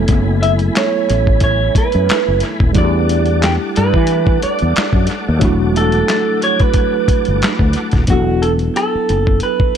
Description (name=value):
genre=R&B, neo-soul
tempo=90 BPM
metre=4/4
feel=swing 54% on 16ths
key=E minor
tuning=A4 = 440 Hz
part: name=tine electric piano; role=accompaniment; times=0.0-9.8 s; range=F#3 to A4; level=-20 LUFS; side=equal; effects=overdrive, medium stereo tremolo, tape echo
part: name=tonewheel organ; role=sustained chords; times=0.0-8.1 s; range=A3 to D6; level=-26 LUFS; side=left 2 dB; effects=slow rotary speaker, chorus vibrato
part: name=fretless electric bass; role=bass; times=0.0-9.6 s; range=D#1 to E3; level=-16 LUFS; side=left 1 dB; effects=analog chorus
part: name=dusty soul sampler-style drum kit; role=drums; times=0.1-9.8 s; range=handclaps, hi-hat, kick drum, rim click, snare drum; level=-16 LUFS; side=left 1 dB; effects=none
part: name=electric guitar through a small old amp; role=melody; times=0.4-9.8 s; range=F#4 to E5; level=-18 LUFS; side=right 4 dB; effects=tape echo
room=little or no reverb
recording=echo-heavy mix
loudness=-12 LUFS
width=side -8 dB against mid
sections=0.0-8.1 A section; 8.1-9.8 B section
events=none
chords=0.0 F#m11; 2.8 Em11; 8.1 E9sus4